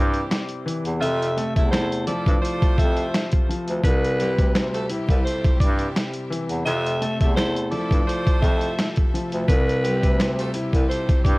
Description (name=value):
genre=hip hop, boom-bap hip-hop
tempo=85 BPM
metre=4/4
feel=swing 55% on 16ths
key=C major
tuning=A4 = 439 Hz
part: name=growling tenor saxophone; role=melody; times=0.0-11.4 s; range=B4 to E5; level=-28 LUFS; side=equal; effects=ping-pong delay
part: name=warm upright piano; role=accompaniment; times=0.0-11.4 s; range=C3 to E4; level=-27 LUFS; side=left 1 dB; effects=none
part: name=edgy saxophone section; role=stabs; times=0.0-11.4 s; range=C3 to C5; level=-33 LUFS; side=right 2 dB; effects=ping-pong delay
part: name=clear bass clarinet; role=bass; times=0.0-11.4 s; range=C2 to G2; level=-26 LUFS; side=equal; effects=none
part: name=boom bap sampler-style drum kit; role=drums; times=0.1-11.4 s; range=hi-hat, kick drum, snare drum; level=-20 LUFS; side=equal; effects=none
part: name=clear studio string section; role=sustained chords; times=3.8-11.4 s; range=C3 to E5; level=-36 LUFS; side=equal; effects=none
room=light reverb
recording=worn, warbling old tape, cassette tape, vinyl crackle, warbly pitch drift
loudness=-19 LUFS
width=side -23 dB against mid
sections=0.0-11.4 A section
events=none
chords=0.0 C; 1.0 Fmaj7; 3.8 Cmaj7; 6.7 Fmaj7; 9.5 Cmaj7